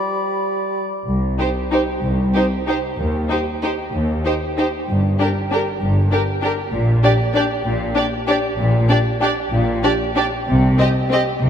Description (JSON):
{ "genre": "classical, orchestral ballroom waltz", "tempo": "170-208 BPM", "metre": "3/4", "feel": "rubato", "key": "unclear", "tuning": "A4 = 437 Hz", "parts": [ { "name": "silver concert flute", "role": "second line", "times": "0.0-0.9 s", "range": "B5", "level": "-32 LUFS", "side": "left 1 dB", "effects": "none" }, { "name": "warm oboe", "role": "second line", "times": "0.0-0.9 s", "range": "D5", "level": "-30 LUFS", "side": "left 4 dB", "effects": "none" }, { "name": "mellow bassoon", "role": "accompaniment", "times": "0.0-0.9 s", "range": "G3", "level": "-28 LUFS", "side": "right 2 dB", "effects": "none" }, { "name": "rich symphonic cello section", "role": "bass", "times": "1.1-11.5 s", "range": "C2 to C3", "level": "-22 LUFS", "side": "equal", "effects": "none" }, { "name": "warm symphonic double bass section", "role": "bass", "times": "1.1-11.5 s", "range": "G1 to Eb2", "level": "-22 LUFS", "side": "equal", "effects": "none" }, { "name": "warm symphonic violin section", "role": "melody", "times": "1.4-11.2 s", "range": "Bb4 to Eb5", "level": "-24 LUFS", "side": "right 1 dB", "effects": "none" }, { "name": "rich symphonic violin section", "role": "second line", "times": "1.4-11.2 s", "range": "G4", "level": "-24 LUFS", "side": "right 2 dB", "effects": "none" }, { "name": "rich studio viola section", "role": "accompaniment", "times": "1.4-11.2 s", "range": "C4 to Eb4", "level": "-24 LUFS", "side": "left 2 dB", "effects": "none" } ], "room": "wet cathedral reverb, RT60 5.1 s", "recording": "in a vast, echoing space", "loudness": "-16 LUFS", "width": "side -8 dB against mid", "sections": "0.0-1.1 A section; 1.1-11.5 B section", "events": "none", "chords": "0.0 G; 1.1 Cm; 3.0 N.C.; 4.9 G5; 6.7 Gm/Bb (rootless); 10.5 N.C." }